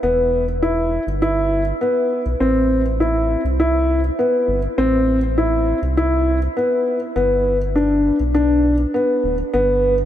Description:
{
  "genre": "piano and strings electronica",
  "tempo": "101 BPM",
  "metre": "4/4",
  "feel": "straight",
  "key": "unclear",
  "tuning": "A4 = 440 Hz",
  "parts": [
    { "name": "dark upright piano", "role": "riff", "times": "0.0-9.9 s", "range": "B3 to E4", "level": "-17 LUFS", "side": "left 1 dB", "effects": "ping-pong delay" },
    { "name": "round analog bass", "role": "bass", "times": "0.0-10.1 s", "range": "D1 to C2", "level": "-21 LUFS", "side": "equal", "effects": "none" }
  ],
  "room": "moderate huge ambient reverb, RT60 7.2 s",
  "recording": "none",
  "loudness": "-16 LUFS",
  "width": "side -11 dB against mid",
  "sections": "0.0-10.1 A section",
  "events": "none",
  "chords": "0.0 Em; 2.4 Am; 7.2 G",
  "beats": "| 0.03 0.63 1.22 1.81 | 2.41 3.00 3.60 4.19 | 4.78 5.38 5.97 6.57 | 7.16 7.75 8.35 8.94 | 9.54"
}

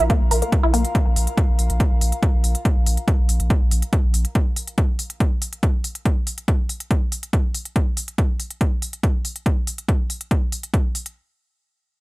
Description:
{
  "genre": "driving peak-time techno",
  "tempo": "141 BPM",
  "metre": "4/4",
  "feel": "straight",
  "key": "unclear",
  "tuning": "A4 = 443 Hz",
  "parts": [
    { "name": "resonant blip pluck", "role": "riff", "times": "0.0-0.8 s", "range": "Bb3 to Bb4", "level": "-23 LUFS", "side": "right 1 dB", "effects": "phaser, tube saturation, wide subtle chorus, sidechain pumping, tape echo" },
    { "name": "saturated sub bass", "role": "bass", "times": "0.0-4.2 s", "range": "Bb1", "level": "-20 LUFS", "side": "equal", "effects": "overdrive, sidechain pumping, low-pass filter" },
    { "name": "electronic hi-hat", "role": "drums", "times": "0.0-11.1 s", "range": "none", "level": "-28 LUFS", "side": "left 1 dB", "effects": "sidechain pumping on hats, small room ambience, sidechain pumping on toms, sidechain pumping on perc" },
    { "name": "warbly tape-like pad", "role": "texture", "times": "0.0-4.4 s", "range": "F4 to Bb5", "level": "-32 LUFS", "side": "left 2 dB", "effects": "chorus, built-in reverb, sidechain pumping" },
    { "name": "electronic kick drum", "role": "drums", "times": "0.1-10.8 s", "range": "none", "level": "-19 LUFS", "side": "equal", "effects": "small room ambience" }
  ],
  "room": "digital ambience",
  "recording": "dry, gritty hardware recording",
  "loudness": "-18 LUFS",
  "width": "side -21 dB against mid",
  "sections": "0.0-11.2 A section",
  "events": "fade-out on ambient pad 0.0-4.4",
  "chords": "0.0 Bb5",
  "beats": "0.10 0.52 | 0.95 1.37 1.80 2.23 | 2.65 3.08 3.50 3.93 | 4.35 4.78 5.20 5.63 | 6.05 6.48 6.91 7.33 | 7.76 8.18 8.61 9.03 | 9.46 9.88 10.31 10.74"
}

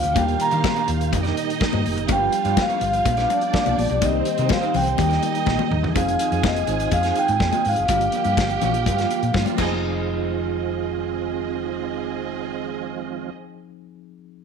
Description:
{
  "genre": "disco",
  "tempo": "124 BPM",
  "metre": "4/4",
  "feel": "straight",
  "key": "F dorian",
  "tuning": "A4 = 442 Hz",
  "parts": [
    { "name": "vibraphone with soft mallets", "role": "melody", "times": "0.0-9.3 s", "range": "D5 to Bb5", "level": "-22 LUFS", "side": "equal", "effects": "slapback echo" },
    { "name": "dark studio string section", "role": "second line", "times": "0.0-13.3 s", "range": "G3 to Ab5", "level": "-29 LUFS", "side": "right 11 dB", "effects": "none" },
    { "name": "electric guitar at the edge of break-up", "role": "accompaniment", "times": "0.0-13.4 s", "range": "Bb3 to F5", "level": "-30 LUFS", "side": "right 16 dB", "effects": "none" },
    { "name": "mellow tine electric piano", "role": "accompaniment", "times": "0.0-14.4 s", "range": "Eb3 to Ab4", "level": "-31 LUFS", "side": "left 13 dB", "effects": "medium stereo tremolo" },
    { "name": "percussive tonewheel organ", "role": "sustained chords", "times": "0.0-13.3 s", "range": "Bb2 to G4", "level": "-31 LUFS", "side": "right 15 dB", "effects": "chorus vibrato, fast rotary speaker" },
    { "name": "hollow-body short-scale fingered electric bass", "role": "bass", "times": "0.0-13.3 s", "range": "F1 to Eb3", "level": "-26 LUFS", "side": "equal", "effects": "none" },
    { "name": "warm soul drum kit", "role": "drums", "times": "0.0-9.7 s", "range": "crash cymbal, hi-hat, kick drum, snare drum, toms", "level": "-27 LUFS", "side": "equal", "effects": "none" },
    { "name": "congas", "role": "percussion", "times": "0.2-10.0 s", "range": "none", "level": "-27 LUFS", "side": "left 15 dB", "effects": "none" }
  ],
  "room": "light reverb, studio reverb",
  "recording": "1960s-style stereo with parts hard left and right",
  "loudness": "-19 LUFS",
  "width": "side -6 dB against mid",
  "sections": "0.0-6.0 A section; 6.0-9.8 B section; 9.8-13.7 C section",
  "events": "drum fill 5.5-6.0",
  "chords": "0.2 Ebmaj7; 2.1 G7; 4.0 Cm7; 5.0 Ebmaj7; 6.0 Fm7; 7.9 Gm7; 9.6 Fm7",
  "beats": "| 0.16 0.64 1.13 1.61 | 2.09 2.57 3.06 3.54 | 4.02 4.50 4.99 5.47 | 5.95 6.44 6.92 7.41 | 7.89 8.37 8.86 9.34 | 9.83 10.31 10.79 11.28 | 11.76 12.25 12.73 13.22"
}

